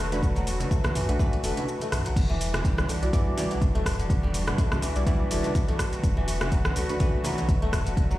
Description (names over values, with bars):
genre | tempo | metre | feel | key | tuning
afro house | 124 BPM | 4/4 | swing 55% on 16ths | E minor | A4 = 440 Hz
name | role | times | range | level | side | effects
muted studio string section | sustained chords | 0.0-8.2 s | D3 to F#4 | -35 LUFS | equal | sidechain pumping
kora | arpeggios | 0.0-8.2 s | B2 to A3 | -33 LUFS | left 2 dB | sidechain pumping, dub echo
deep mellow chord stab | stabs | 0.0-7.5 s | G3 to D5 | -34 LUFS | right 1 dB | chorus, sidechain pumping, dub echo
warm sub bass | bass | 0.0-8.2 s | E1 to B1 | -30 LUFS | equal | tube saturation, sidechain pumping
deep house drum kit | drums | 0.1-8.2 s | crash cymbal, hi-hat, rim click, shaker, toms | -32 LUFS | equal | small room ambience
congas | percussion | 0.1-8.2 s | none | -35 LUFS | right 1 dB | none
electronic kick drum | drums | 0.2-8.1 s | none | -24 LUFS | equal | small room ambience
room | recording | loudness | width
little or no reverb | played on a big sound system in a bare room, stone room reverb | -23 LUFS | side -16 dB against mid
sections
0.0-2.2 A section; 2.2-8.2 B section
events
break 1.7-2.2; drop 2.2-8.2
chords
0.0 Bm7/E; 2.2 Em9